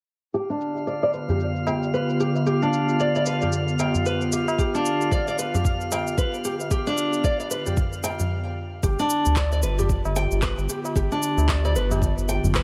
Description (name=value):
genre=organic downtempo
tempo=113 BPM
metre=4/4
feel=swing 59% on 16ths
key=unclear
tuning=A4 = 440 Hz
part: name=warbly tape-like pad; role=sustained chords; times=0.8-12.6 s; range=D3 to G4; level=-30 LUFS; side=equal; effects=chorus, built-in reverb, sidechain pumping
part: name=nylon-string guitar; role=arpeggios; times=0.3-12.6 s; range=D4 to G5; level=-28 LUFS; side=equal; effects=low-pass filter, digital delay
part: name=electronic shaker and handclaps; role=drums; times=0.3-12.6 s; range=none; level=-34 LUFS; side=equal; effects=low-pass filter on perc, low-pass filter on snare, low-pass filter on room
part: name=drifting glass-harmonics texture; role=texture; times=0.7-8.3 s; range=F5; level=-35 LUFS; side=equal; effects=chorus, built-in reverb
part: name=tabla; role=percussion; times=0.8-12.5 s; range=none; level=-32 LUFS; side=equal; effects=none
part: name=electronic kick drum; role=drums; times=4.6-12.6 s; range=none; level=-26 LUFS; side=equal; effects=none
part: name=round analog bass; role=bass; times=8.8-12.6 s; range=G1 to D2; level=-26 LUFS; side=equal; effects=none
room=light reverb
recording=none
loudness=-24 LUFS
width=mono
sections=0.3-8.8 A section; 8.8-12.6 B section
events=filter sweep on nylon-string guitar 0.3-8.8; stop 8.3-8.8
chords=0.3 G7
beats=| 0.34 0.87 1.40 1.93 | 2.46 2.99 3.52 4.06 | 4.59 5.12 5.65 6.18 | 6.71 7.24 7.77 8.30 | 8.84 9.37 9.90 10.43 | 10.96 11.49 12.02 12.55